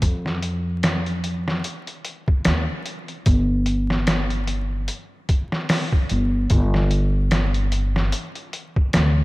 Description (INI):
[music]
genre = trip hop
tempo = 74 BPM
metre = 4/4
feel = swing 57% on 16ths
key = unclear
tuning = A4 = 440 Hz
[part]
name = upright bass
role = bass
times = 0.0-9.2 s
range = G1 to F2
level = -20 LUFS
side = equal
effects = none
[part]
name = trip hop sampler-style drum kit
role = drums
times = 0.0-9.2 s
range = hi-hat, kick drum, snare drum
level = -22 LUFS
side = equal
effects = none
[sound]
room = light reverb, digital ambience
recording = vinyl crackle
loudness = -19 LUFS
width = side -20 dB against mid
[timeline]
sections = 0.0-9.2 A section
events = none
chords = none